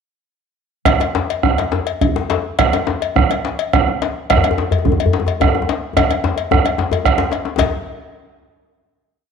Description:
west african traditional, West African drum ensemble; 138-156 BPM (dotted quarters); 12/8; straight
bombo; percussion; 0.9-7.7 s; -17 LUFS; right 6 dB
cowbell; percussion; 0.9-7.7 s; -23 LUFS; left 11 dB
djembe; percussion; 0.9-7.7 s; -22 LUFS; left 6 dB
djembe; percussion; 1.0-7.7 s; -20 LUFS; left 4 dB
moderate echo chamber reverb, RT60 1.7 s, small room reverb; 1960s-style stereo with parts hard left and right; -15 LUFS; side -6 dB against mid
0.9-7.6 A section; 7.6-9.2 final hit
speeding up 0.9-9.2; drum fill 6.0-7.6

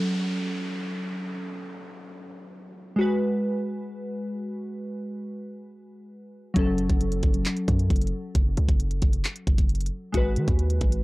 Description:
hip hop, trap; 134 BPM; 4/4; half-time; A4 = 441 Hz
glassy digital keys; accompaniment; 0.0-11.0 s; F#3 to B4; -29 LUFS; equal; chorus, low-pass filter
downlifter; sound effects; 0.0-3.0 s; -39 LUFS; equal
hard-hitting 808-style bass; bass; 6.6-11.0 s; F#1 to D#3; -25 LUFS; equal; tube saturation
trap drum kit; drums; 6.6-11.0 s; handclaps, hi-hat, kick drum; -24 LUFS; equal
little or no reverb; dry, gritty hardware recording, transformer saturation, cassette tape; -24 LUFS; side -21 dB against mid
0.0-11.0 A section
0.0 F#m; 3.0 G#m7; 6.6 F#m; 10.1 G#m7

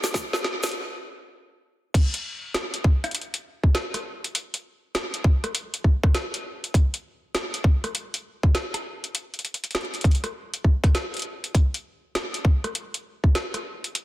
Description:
glitch hop; 100 BPM; 4/4; swing 64% on 16ths
drum and bass drum kit; drums; 0.0-14.0 s; crash cymbal, hi-hat, rim click, snare drum; -28 LUFS; equal
tube shaker; percussion; 0.0-0.7 s; -34 LUFS; left 2 dB
electronic kick drum; drums; 0.1-13.3 s; -18 LUFS; equal
light reverb; dense, heavily limited modern master, high-pass filter; -23 LUFS; side -16 dB against mid
0.0-1.9 A section; 1.9-14.0 B section
build-up 0.0-1.9; drum fill 0.0-0.7; stop 0.7-1.9; drop 1.9-14.0

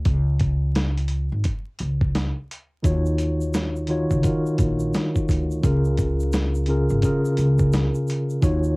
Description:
hip hop, boom-bap hip-hop; 86 BPM; 4/4; swing 62% on 16ths; A4 = 439 Hz
upright bass; bass; 0.1-8.8 s; Ab1 to Eb2; -22 LUFS; equal
dusty soul sampler-style drum kit; drums; 0.1-8.6 s; hi-hat, kick drum, snare drum; -24 LUFS; equal; overdrive, cassette tape
mellow tine electric piano; accompaniment; 2.8-8.8 s; Db3 to Db5; -22 LUFS; equal; medium stereo tremolo, cassette tape, high-pass filter, low-pass filter
egg shaker; percussion; 2.9-8.8 s; -46 LUFS; right 3 dB
little or no reverb; home recording on cassette, vinyl crackle; -20 LUFS; side -28 dB against mid
0.0-8.8 A section
0.1 N.C.; 2.8 Ebm7; 5.6 Bbm7

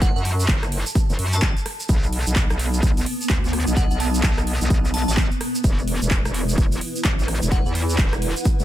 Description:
bass house; 128 BPM; 4/4; swing 61% on 16ths; A4 = 440 Hz
glassy synth bell; melody; 0.0-7.7 s; F#5 to A5; -32 LUFS; left 1 dB; chorus, phaser, ping-pong delay
metallic wobble bass; bass; 0.0-8.6 s; E1 to F#2; -23 LUFS; equal; chorus, tube saturation, sidechain pumping
big-room dance drum kit; drums; 0.0-8.6 s; handclaps, hi-hat, rim click; -28 LUFS; right 1 dB; overdrive
electronic kick drum; drums; 0.0-8.6 s; -20 LUFS; equal; overdrive
tube shaker; percussion; 0.0-8.6 s; -32 LUFS; right 3 dB
downlifter; sound effects; 0.1-1.9 s; barely audible
granular cloud pad; texture; 0.0-8.6 s; B3 to A5; -29 LUFS; equal; built-in reverb, sidechain pumping
digital ambience; -18 LUFS; side -13 dB against mid
0.0-8.6 A section
0.0 F#m; 1.9 N.C.; 5.6 E5

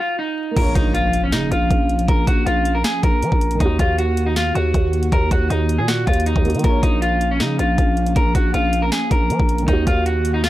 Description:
hip hop, trap; 158 BPM; 4/4; half-time; Bb minor; A4 = 440 Hz
electric guitar at the edge of break-up; melody; 0.0-10.5 s; Db4 to Bb4; -22 LUFS; equal; low-pass filter
dark baby grand piano; accompaniment; 0.0-10.5 s; Eb3 to Db5; -27 LUFS; right 2 dB; low-pass filter
airy breathy pad; sustained chords; 0.6-10.5 s; Eb3 to Gb4; -26 LUFS; left 1 dB; chorus
growling 808-style bass; bass; 0.6-10.5 s; Bb1 to F3; -20 LUFS; equal
trap drum kit; drums; 0.6-10.5 s; crash cymbal, hi-hat, kick drum, snare drum; -19 LUFS; equal
impact; sound effects; 0.7-2.1 s; -29 LUFS; equal
little or no reverb; dry, gritty hardware recording, vinyl crackle; -16 LUFS; side -15 dB against mid
0.6-10.5 A section
stop 0.0-0.6; impact 0.6-2.1
0.0 Ebm; 0.6 Bbm; 3.6 Ebm; 6.6 Bbm; 9.7 Ebm

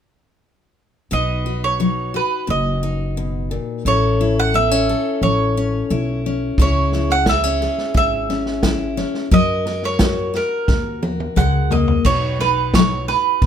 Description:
honky-tonk and classic country; 88 BPM; 4/4; straight; B major; A4 = 442 Hz
mandolin; melody; 1.1-13.5 s; A#4 to F#5; -20 LUFS; right 4 dB
picked steel-string acoustic guitar; accompaniment; 1.1-13.5 s; G#2 to B4; -21 LUFS; left 4 dB
upright bass; bass; 1.1-13.5 s; F#1 to F#2; -22 LUFS; equal
vintage drum kit; drums; 6.6-13.5 s; crash cymbal, hi-hat, kick drum, snare drum, toms; -20 LUFS; equal
light reverb; -16 LUFS; side -8 dB against mid
1.1-12.1 A section; 12.1-13.5 B section
drum fill 10.7-12.1
1.1 B; 3.9 A; 6.6 C#m; 9.3 F#; 12.1 B

